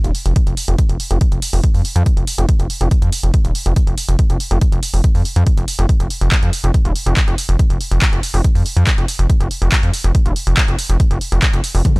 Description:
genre	driving peak-time techno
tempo	141 BPM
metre	4/4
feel	straight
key	unclear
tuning	A4 = 440 Hz
part	gritty driven synth bass	bass	0.0-12.0 s	Eb1 to F2	-15 LUFS	equal	sidechain pumping
part	punchy analog drum machine	drums	0.0-12.0 s	handclaps, hi-hat, toms	-22 LUFS	equal	sidechain pumping on hats, sidechain pumping on cymbals, sidechain pumping on toms
part	electronic kick drum	drums	0.4-11.9 s	none	-15 LUFS	equal	none
room	digital ambience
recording	dry, gritty hardware recording, transformer saturation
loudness	-13 LUFS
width	side -28 dB against mid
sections	0.0-12.0 A section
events	none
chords	none

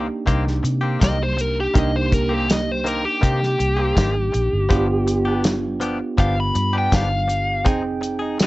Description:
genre	straight-eighth soul blues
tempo	81 BPM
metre	4/4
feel	straight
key	C minor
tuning	A4 = 439 Hz
part	bell-like tine electric piano	accompaniment	0.0-8.5 s	Bb3 to G5	-25 LUFS	right 3 dB	analog chorus
part	direct-recorded clean electric guitar	stabs	0.0-8.4 s	Eb3 to Ab4	-28 LUFS	left 3 dB	analog delay
part	vintage muted fingered electric bass	bass	0.0-8.5 s	F1 to C3	-23 LUFS	equal	none
part	warm soul drum kit	drums	0.3-8.5 s	hi-hat, kick drum, snare drum, tambourine	-21 LUFS	equal	none
part	biting lead guitar	melody	1.0-8.5 s	G4 to B5	-22 LUFS	equal	overdrive
room	light reverb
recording	nothing above 8.0 kHz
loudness	-18 LUFS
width	side -19 dB against mid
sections	0.0-8.5 A section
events	none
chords	0.0 Cm7; 4.7 G7; 7.7 Fm7

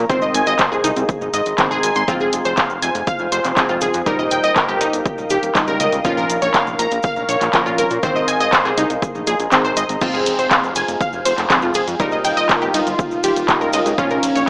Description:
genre	melodic techno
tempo	121 BPM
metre	4/4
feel	straight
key	F minor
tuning	A4 = 439 Hz
part	synth brass stab	stabs	0.0-14.5 s	Ab2 to Eb4	-24 LUFS	equal	chorus, sidechain pumping, tape echo
part	fat analog bass	bass	0.0-14.4 s	Eb1 to Bb2	-25 LUFS	equal	sidechain pumping
part	warbly tape-like pad	texture	0.0-14.5 s	Eb4 to Db6	-25 LUFS	equal	chorus, built-in reverb, sidechain pumping
part	analog pluck	arpeggios	0.1-14.4 s	Eb4 to C6	-19 LUFS	equal	chorus, sidechain pumping, tape echo
part	deep house drum kit	drums	0.1-14.5 s	crash cymbal, handclaps, hi-hat, ride cymbal	-18 LUFS	equal	none
part	electronic kick drum	drums	0.1-14.1 s	none	-23 LUFS	equal	overdrive
part	cabasa	percussion	0.1-14.5 s	none	-33 LUFS	equal	none
part	analog synth brass	melody	10.0-14.5 s	C4 to F4	-22 LUFS	equal	chorus, sidechain pumping, tape echo
room	moderate digital room reverb, RT60 1.1 s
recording	dry, gritty hardware recording, small speaker sound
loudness	-15 LUFS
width	side -33 dB against mid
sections	0.0-14.5 A section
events	kick drops out 9.5-10.0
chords	0.1 Ab; 2.1 Fm; 4.1 Eb; 6.0 Bbm; 8.0 Ab; 10.0 Fm; 12.0 Eb; 14.0 Bbm

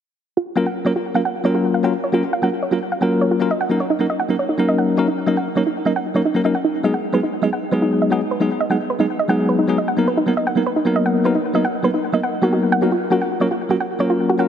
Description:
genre	future bass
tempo	153 BPM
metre	4/4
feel	half-time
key	F# major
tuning	A4 = 441 Hz
part	soft round pluck	arpeggios	0.4-14.5 s	D#4 to F#5	-21 LUFS	right 2 dB	chorus, ping-pong delay
part	bell-like tine electric piano	accompaniment	0.6-14.5 s	F#3 to A#4	-18 LUFS	moving between left 3 dB and right 3 dB	auto-pan, ping-pong delay
room	wet lush hall reverb, RT60 3.0 s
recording	heavily compressed radio sound, multiband compression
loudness	-16 LUFS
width	side -9 dB against mid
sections	0.4-14.5 A section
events	none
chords	0.4 F#maj7; 3.5 D#m7; 6.6 G#m7; 9.8 Bmaj7; 12.9 F#maj7

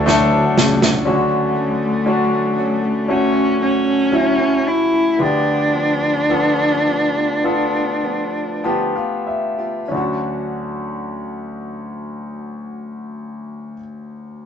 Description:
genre	pop ballad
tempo	46-60 BPM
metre	4/4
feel	straight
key	D major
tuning	A4 = 440 Hz
part	warm cello	melody	0.0-8.7 s	A3 to E4	-18 LUFS	equal	none
part	mellow French horn section	second line	0.0-0.5 s	F#2 to A3	-29 LUFS	right 2 dB	none
part	bright grand piano	accompaniment	0.0-14.5 s	D2 to A5	-20 LUFS	left 2 dB	none
part	lush unison pad	sustained chords	0.0-1.0 s	F#4 to A5	-28 LUFS	equal	none
part	fingerpicked acoustic archtop guitar	arpeggios	0.0-13.9 s	D3 to G4	-28 LUFS	right 3 dB	none
part	dark studio cello section	bass	0.0-1.0 s	C#2 to D2	-22 LUFS	left 1 dB	none
part	snare drum	drums	0.1-1.1 s	none	-17 LUFS	right 2 dB	none
room	moderate stone room reverb, RT60 1.0 s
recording	rough rehearsal-room recording, tube saturation, nothing above 7.9 kHz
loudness	-15 LUFS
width	side -8 dB against mid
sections	0.0-1.1 A section; 1.1-9.9 B section; 9.9-14.5 C section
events	drum fill 0.1-1.1; slowing down 1.1-9.9; grand piano fill 8.0-9.9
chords	0.0 D; 1.1 Dmaj7; 5.2 G7/D; 9.9 Dmaj7

